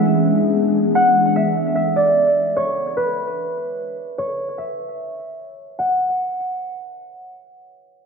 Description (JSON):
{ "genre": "hip hop", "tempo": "149 BPM", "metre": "4/4", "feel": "half-time", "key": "unclear", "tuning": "A4 = 438 Hz", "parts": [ { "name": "concert harp", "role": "melody", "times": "0.0-7.4 s", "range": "B4 to F#5", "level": "-20 LUFS", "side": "equal", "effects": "low-pass filter, analog delay" }, { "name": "ethereal airy pad", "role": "sustained chords", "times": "0.0-0.9 s", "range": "E3 to G#4", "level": "-19 LUFS", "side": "left 1 dB", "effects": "ensemble chorus, built-in reverb, low-pass filter" } ], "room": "wet echo chamber reverb, RT60 1.8 s, small room ambience", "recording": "echo-heavy mix", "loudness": "-17 LUFS", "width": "side -5 dB against mid", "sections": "0.0-5.8 A section; 5.8-8.1 B section", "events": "filter sweep 0.0-5.8", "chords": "0.0 E7; 1.0 N.C.", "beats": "0.15 0.55 | 0.95 1.36 1.76 2.16 | 2.56 2.97 3.37 3.77 | 4.17 4.58 4.98 5.38 | 5.79 6.19 6.59 6.99" }